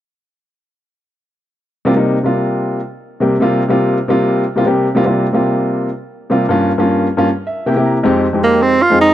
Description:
jazz; 155 BPM; 4/4; straight; A4 = 439 Hz
clear baby grand piano; accompaniment; 1.9-9.1 s; F2 to Bb5; -13 LUFS; left 1 dB
warm tenor saxophone; melody; 8.4-9.1 s; Bb3 to F4; -9 LUFS; right 2 dB
studio reverb; dry, close 1970s-style studio recording; -12 LUFS; side -12 dB against mid
1.9-8.0 A section; 8.0-9.1 B section
grand piano fill 7.3-8.0
1.9 C7sus4; 6.5 Gm7b5; 7.3 C7; 8.0 Fm9
| 1.86 2.25 2.64 3.02 | 3.41 3.79 4.18 4.57 | 4.95 5.34 5.73 6.11 | 6.50 6.89 7.27 7.66 | 8.04 8.43 8.82

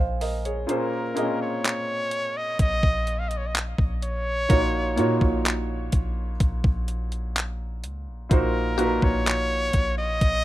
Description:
contemporary R&B; 63 BPM; 4/4; straight; Bb minor; A4 = 441 Hz
felt-muted upright piano; accompaniment; 0.0-10.4 s; Bb2 to Ab5; -27 LUFS; right 1 dB
soft 808-style bass; bass; 0.0-10.4 s; Bb1 to Bb2; -28 LUFS; equal
mallet-like synth pluck; texture; 0.0-10.4 s; Gb4 to Eb5; -33 LUFS; left 1 dB; chorus, ping-pong delay
crisp 8-bit digital drum machine; drums; 0.2-10.4 s; handclaps, hi-hat, kick drum; -23 LUFS; equal; overdrive
warm trumpet; melody; 0.7-10.4 s; Bb4 to F5; -28 LUFS; equal; ping-pong delay
little or no reverb; rough home demo mix; -22 LUFS; side -15 dB against mid
0.0-10.4 A section
kick muted 0.7-2.6
0.0 Dbmaj7/Bb; 0.7 Bbm9; 4.5 Ebm9/Bb; 8.3 Ab9/Bb (rootless)
| 0.69 1.64 2.59 3.55 | 4.50 5.45 6.40 7.36 | 8.31 9.26 10.21

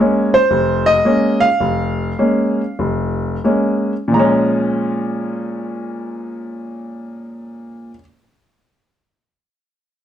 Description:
solo jazz; 83-117 BPM; 4/4; swing 66% on 8ths; Bb minor; A4 = 440 Hz
warm baby grand piano; solo; 0.0-8.0 s; F1 to Bb5; -15 LUFS; equal
light reverb; dark, warm production; -14 LUFS; side -10 dB against mid
0.0-4.1 A section; 4.1-9.9 B section
slowing down 0.0-4.1
0.0 Bbm7
0.51 1.04 | 1.60 2.17 2.78 3.43 | 4.13 4.86 5.58 6.31 | 7.04 7.76

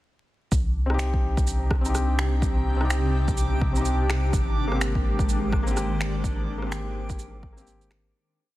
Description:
future garage; 126 BPM; 4/4; swing 60% on 16ths; C minor; A4 = 440 Hz
granular cloud pad; sustained chords; 1.6-8.1 s; C3 to G5; -31 LUFS; equal; built-in reverb, sidechain pumping
soft dub sub bass; bass; 0.5-8.1 s; Ab1 to C2; -26 LUFS; equal; sidechain pumping
electronic kick drum; drums; 0.5-7.5 s; -26 LUFS; equal; overdrive, small room reverb
electronic shaker, rim click and finger snaps; drums; 0.5-8.0 s; -33 LUFS; right 1 dB; overdrive, small room reverb, soft clipping on snare
backwards swelling texture; texture; 1.5-8.2 s; D4 to D6; -38 LUFS; right 1 dB; built-in reverb
felt-muted upright piano; accompaniment; 0.9-8.2 s; Bb3 to G4; -31 LUFS; left 2 dB; vintage 12-bit sampler grit, sidechain pumping, dub echo
light reverb; dense, heavily limited modern master, vinyl crackle; -22 LUFS; side -16 dB against mid
0.5-8.1 groove
fade-out 5.6-8.1
0.5 Cm; 4.3 Abmaj7
| 0.52 1.00 1.48 1.95 | 2.43 2.90 3.38 3.86 | 4.33 4.81 5.29 5.76 | 6.24 6.71 7.19 7.67

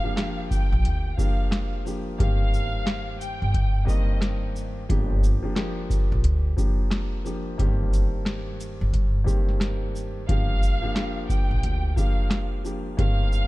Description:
hip hop, boom-bap hip-hop; 89 BPM; 4/4; swing 63% on 16ths; G minor; A4 = 440 Hz
warm symphonic violin section; melody; 0.0-4.4, 10.3-13.5 s; Eb5 to G5; -33 LUFS; equal; high-pass filter, low-pass filter, ping-pong delay
dark grand piano; accompaniment; 0.0-13.5 s; G2 to G4; -32 LUFS; left 1 dB; high-pass filter, low-pass filter
booming analog drum machine; drums; 0.2-13.5 s; hi-hat, kick drum, rim click, shaker, snare drum; -24 LUFS; equal
upright bass; bass; 0.7-13.5 s; G1 to G2; -25 LUFS; equal
small room ambience; -22 LUFS; side -19 dB against mid
0.0-13.5 A section
0.0 Gm7; 2.2 Cm7/G; 4.9 Gm7; 7.6 Cm7/G; 10.3 Gm7
0.17 0.85 1.52 | 2.20 2.87 3.54 4.22 | 4.89 5.57 6.24 6.92 | 7.59 8.26 8.94 9.61 | 10.29 10.96 11.63 12.31 | 12.98

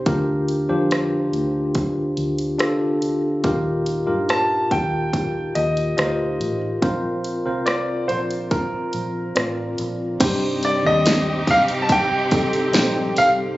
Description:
pop ballad; 71 BPM; 4/4; straight; A4 = 440 Hz
bright tine electric piano; accompaniment; 0.0-13.6 s; G2 to D5; -22 LUFS; equal; medium stereo tremolo
vintage muted fingered electric bass; bass; 0.0-13.6 s; A1 to G2; -29 LUFS; equal
pop drum kit; drums; 0.1-13.4 s; crash cymbal, hi-hat, kick drum, rim click, snare drum; -22 LUFS; equal
clear concert grand piano; melody; 4.3-13.3 s; Bb4 to A5; -21 LUFS; equal
warm studio string section; sustained chords; 10.2-13.6 s; C3 to G4; -26 LUFS; equal
tambourine; percussion; 10.2-13.4 s; -32 LUFS; right 1 dB
light reverb, small room ambience; recorded on a phone in the room, studio reverb, nothing above 7.7 kHz; -18 LUFS; side -17 dB against mid
0.0-10.2 A section; 10.2-13.6 B section
0.1 Gm7/D; 3.4 Ebadd9; 6.8 Bbsus2; 10.2 Cm
| 0.06 0.91 1.75 2.60 | 3.44 4.29 5.13 5.98 | 6.82 7.67 8.51 9.36 | 10.20 11.05 11.89 12.74

